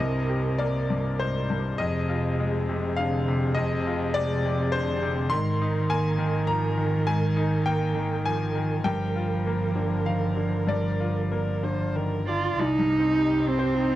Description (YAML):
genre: neoclassical piano and strings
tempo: 101 BPM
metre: 3/4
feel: rubato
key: C minor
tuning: A4 = 441 Hz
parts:
  - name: dark cello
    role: second line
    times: 0.0-14.0 s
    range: C3 to F4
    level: -27 LUFS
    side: right 2 dB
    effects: none
  - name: bright concert grand piano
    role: accompaniment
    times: 0.0-14.0 s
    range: C2 to C6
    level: -28 LUFS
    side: left 3 dB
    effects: none
  - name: dark viola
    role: accompaniment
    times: 0.0-14.0 s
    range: Eb4 to D5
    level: -33 LUFS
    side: right 2 dB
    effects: none
  - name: dark double bass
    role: bass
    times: 0.0-14.0 s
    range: F1 to C2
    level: -29 LUFS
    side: equal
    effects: none
room: moderate studio reverb, RT60 0.6 s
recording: cassette tape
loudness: -23 LUFS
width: side -14 dB against mid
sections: 0.0-12.6 A section; 12.6-14.0 B section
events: none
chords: 0.0 Cm7; 1.8 Fm7; 5.3 Abadd9; 8.8 Gm7; 12.6 Cm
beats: | 0.00 0.59 1.19 | 1.78 2.37 2.97 | 3.55 4.14 4.73 | 5.31 5.90 6.49 | 7.08 7.67 8.25 | 8.85 9.45 10.06 | 10.68 11.32 11.95 | 12.58 13.18 13.78